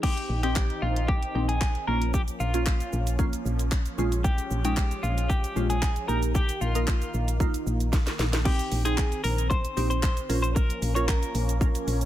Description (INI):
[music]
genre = dance-pop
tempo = 114 BPM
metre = 4/4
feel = straight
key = unclear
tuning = A4 = 440 Hz
[part]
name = twelve-string electric guitar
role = melody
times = 0.0-12.1 s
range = F4 to Db5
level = -32 LUFS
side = left 1 dB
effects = harmonic tremolo, ping-pong delay
[part]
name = glassy wavetable pluck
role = accompaniment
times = 0.0-12.1 s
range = Ab3 to G5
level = -32 LUFS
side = right 2 dB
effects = chorus, sidechain pumping
[part]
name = filtered supersaw swell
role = sustained chords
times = 0.0-12.1 s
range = Eb3 to Eb4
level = -37 LUFS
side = equal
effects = sidechain pumping
[part]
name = house drum kit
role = drums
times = 0.0-12.1 s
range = crash cymbal, handclaps, hi-hat, kick drum, shaker, snare drum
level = -27 LUFS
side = equal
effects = none
[part]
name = solid FM bass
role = bass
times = 0.3-12.1 s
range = Bb1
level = -27 LUFS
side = equal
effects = sidechain pumping
[sound]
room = little or no reverb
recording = none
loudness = -24 LUFS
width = side -13 dB against mid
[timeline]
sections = 0.0-12.1 A section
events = drum fill 7.9-8.5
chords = 0.0 Cm/Bb; 1.9 Bbm; 4.0 Db/Bb; 6.1 Eb/Bb; 8.5 Cm/Bb; 10.3 Bbm